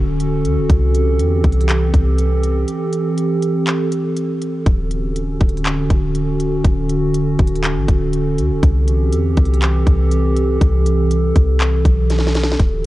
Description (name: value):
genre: hip hop, atmospheric cloud-rap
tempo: 121 BPM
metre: 4/4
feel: half-time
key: unclear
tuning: A4 = 441 Hz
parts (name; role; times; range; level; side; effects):
- warbly tape-like pad; sustained chords; 0.0-12.9 s; D3 to A4; -19 LUFS; right 1 dB; chorus, built-in reverb, sidechain pumping
- soft 808-style bass; bass; 0.0-12.9 s; D1 to E2; -17 LUFS; equal; none
- trap drum kit; drums; 0.2-12.7 s; handclaps, hi-hat, kick drum, snare drum; -17 LUFS; equal; none
room: little or no reverb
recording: worn, warbling old tape, cassette tape, warbly pitch drift, nothing above 10.6 kHz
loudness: -14 LUFS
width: side -16 dB against mid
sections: 0.0-12.9 A section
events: break 2.7-4.7; drum fill 12.1-12.6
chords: 0.0 Dmaj7; 0.7 C6; 4.7 Dmaj7; 8.6 C6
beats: 0.20 | 0.70 1.19 1.69 2.18 | 2.68 3.17 3.67 4.17 | 4.66 5.16 5.65 6.15 | 6.65 7.14 7.64 8.13 | 8.63 9.12 9.62 10.12 | 10.61 11.11 11.61 12.10 | 12.60